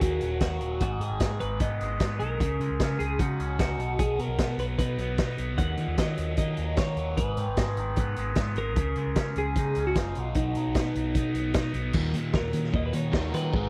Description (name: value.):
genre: indie rock.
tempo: 151 BPM.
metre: 4/4.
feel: straight.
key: Eb minor.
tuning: A4 = 441 Hz.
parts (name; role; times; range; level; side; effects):
twelve-string electric guitar; melody; 0.0-13.7 s; D#4 to Gb5; -35 LUFS; equal; spring reverb, tape echo.
raw garage guitar; riff; 0.0-13.7 s; Eb2 to Eb4; -37 LUFS; equal; overdrive, phaser.
picked electric bass; bass; 0.0-13.7 s; Eb1 to Eb3; -33 LUFS; equal; none.
raw garage drum kit; drums; 0.0-13.6 s; crash cymbal, hi-hat, kick drum, snare drum; -31 LUFS; equal; none.
overdriven electric guitar; riff; 11.9-13.7 s; Eb2 to Ab3; -33 LUFS; equal; analog chorus.
room: little or no reverb.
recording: dry, close 1970s-style studio recording.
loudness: -28 LUFS.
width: mono.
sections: 0.0-11.9 A section; 11.9-13.7 B section.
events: none.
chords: 0.0 Ebm; 0.8 Abm; 2.4 Dbsus2; 3.8 B; 5.6 Ebm; 7.2 Abm; 8.8 Dbsus2; 10.2 B; 11.9 Ebm.